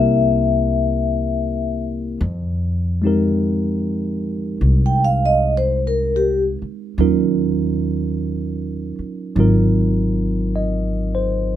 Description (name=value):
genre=jazz ballad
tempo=50 BPM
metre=4/4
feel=swing 68% on 8ths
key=F minor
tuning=A4 = 439 Hz
part: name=vibraphone with soft mallets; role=melody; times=0.0-6.4 s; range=G4 to G5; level=-19 LUFS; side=left 3 dB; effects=none
part: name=mellow tine electric piano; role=accompaniment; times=0.0-11.6 s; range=Gb3 to Eb5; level=-21 LUFS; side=moving between left 4 dB and right 11 dB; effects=auto-pan
part: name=upright bass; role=bass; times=0.0-11.6 s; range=Ab1 to F2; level=-20 LUFS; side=equal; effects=none
room=light reverb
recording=close, detailed microphones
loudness=-17 LUFS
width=side -11 dB against mid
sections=0.0-2.2 A section; 2.2-11.6 B section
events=vibraphone solo 2.2-11.6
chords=0.0 C7; 2.2 Fm11; 7.0 Ebm7; 9.4 Ab13